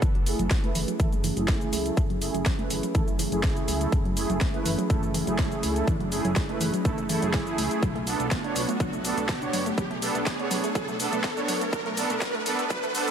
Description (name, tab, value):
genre	progressive house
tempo	123 BPM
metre	4/4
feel	straight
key	F# minor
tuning	A4 = 440 Hz
part	airy breathy pad	sustained chords	0.0-13.1 s	F#3 to G#4	-34 LUFS	equal	chorus, sidechain pumping
part	wide unison pluck	arpeggios	0.0-13.1 s	E3 to D4	-32 LUFS	equal	sidechain pumping, tape echo
part	dark detuned saw bass	bass	0.0-13.1 s	F#1 to C#2	-35 LUFS	equal	sidechain pumping
part	big-room dance drum kit	drums	0.0-13.1 s	hi-hat, shaker, snare drum	-33 LUFS	equal	overdrive, high-pass filter on perc, high-pass filter on hats, high-pass filter on snare
part	electronic kick drum	drums	0.0-12.8 s	none	-26 LUFS	equal	overdrive
part	swell and riser	sound effects	0.0-13.1 s	none	-34 LUFS	right 1 dB	none
part	soft supersaw	stabs	0.3-13.1 s	A3 to C#5	-30 LUFS	right 3 dB	sidechain pumping, low-pass filter, tape echo
room	light reverb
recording	high-pass filter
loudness	-24 LUFS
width	side -8 dB against mid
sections	0.0-13.1 A section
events	build-up 0.0-13.1; filter sweep on synth pluck 0.0-13.1; filter sweep on supersaw synth 0.0-13.1; filter sweep on analog synth pad 0.0-13.1; filter sweep 0.0-13.1; riser 0.4-13.1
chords	0.0 F#m9; 7.8 Bm7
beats	| 0.02 0.51 1.00 1.49 | 1.97 2.46 2.95 3.44 | 3.92 4.41 4.90 5.39 | 5.88 6.36 6.85 7.34 | 7.83 8.31 8.80 9.29 | 9.78 10.27 10.75 11.24 | 11.73 12.22 12.71